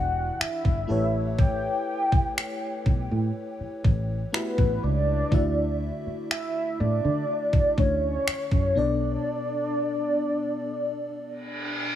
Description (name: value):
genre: contemporary R&B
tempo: 61 BPM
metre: 4/4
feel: straight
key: unclear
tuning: A4 = 441 Hz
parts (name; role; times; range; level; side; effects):
- warm velvety synth lead; melody; 0.0-12.0 s; B4 to G5; -28 LUFS; equal; chorus, tremolo, tape echo
- FM electric piano with soft pad layer; accompaniment; 0.0-12.0 s; B2 to E5; -32 LUFS; left 2 dB; chorus, tremolo
- fingered electric bass; bass; 0.0-9.2 s; E1 to D3; -26 LUFS; right 1 dB; none
- detuned 8-bit digital drum machine; drums; 0.4-8.7 s; finger snaps, kick drum; -24 LUFS; equal; none
- reverse cymbal; sound effects; 11.4-12.0 s; none; -30 LUFS; right 1 dB; none
room: light reverb, digital ambience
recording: none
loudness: -23 LUFS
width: side -11 dB against mid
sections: 0.0-12.0 A section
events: break 9.3-12.0; reverse cymbal 11.4-12.0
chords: 0.0 Em7; 0.9 A13; 5.3 Dmaj9; 8.8 Bm7